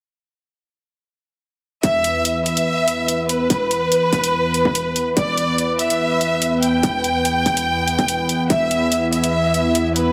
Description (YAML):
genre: heavy wobble dubstep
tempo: 144 BPM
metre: 4/4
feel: half-time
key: E minor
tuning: A4 = 442 Hz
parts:
  - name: clear studio violin section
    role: melody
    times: 1.8-10.1 s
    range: B4 to G5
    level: -22 LUFS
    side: equal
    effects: dub echo
  - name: supersaw pad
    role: sustained chords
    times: 1.8-10.1 s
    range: E2 to B4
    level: -23 LUFS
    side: equal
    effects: sidechain pumping, low-pass filter
  - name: electronic hi-hat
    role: drums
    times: 1.8-10.0 s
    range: none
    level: -25 LUFS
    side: equal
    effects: studio ambience
  - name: electronic kick drum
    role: drums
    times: 1.8-8.6 s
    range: none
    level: -24 LUFS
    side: equal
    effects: distortion, high-pass filter on kick, studio ambience
room: moderate lush hall reverb, RT60 2.0 s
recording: none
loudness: -19 LUFS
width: mono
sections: 1.8-10.1 A section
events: filter sweep on supersaw synth 1.8-10.1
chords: 1.8 E5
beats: | 1.83 2.25 2.67 3.08 | 3.50 3.92 4.33 4.75 | 5.17 5.58 6.00 6.42 | 6.83 7.25 7.67 8.09 | 8.50 8.92 9.34 9.75